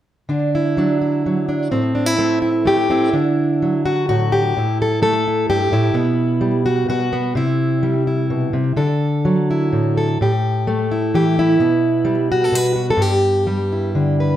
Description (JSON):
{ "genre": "folk, solo fingerstyle acoustic guitar", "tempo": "127 BPM", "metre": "3/4", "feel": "rubato", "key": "unclear", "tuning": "A4 = 440 Hz", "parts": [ { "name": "fingerpicked plugged-in steel-string acoustic guitar", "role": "solo", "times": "0.3-14.4 s", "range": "G2 to B4", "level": "-15 LUFS", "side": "equal", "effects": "slapback echo" } ], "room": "light reverb", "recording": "none", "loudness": "-15 LUFS", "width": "side -11 dB against mid", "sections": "0.3-3.1 A section; 3.1-14.4 B section", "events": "none", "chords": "0.3 Dadd9; 1.7 Am7; 3.1 Dadd9; 4.6 A5; 5.9 Gmaj7/B; 7.3 C; 8.8 Dadd9; 10.2 A5; 11.6 Gmaj7/B; 13.0 G6", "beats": "| 0.30 0.78 1.25 | 1.71 2.18 2.65 | 3.13 3.61 4.09 | 4.56 5.02 5.48 | 5.94 6.41 6.88 | 7.35 7.82 8.30 | 8.78 9.26 9.73 | 10.20 10.66 11.13 | 11.59 12.05 12.52 | 12.99 13.47 13.96" }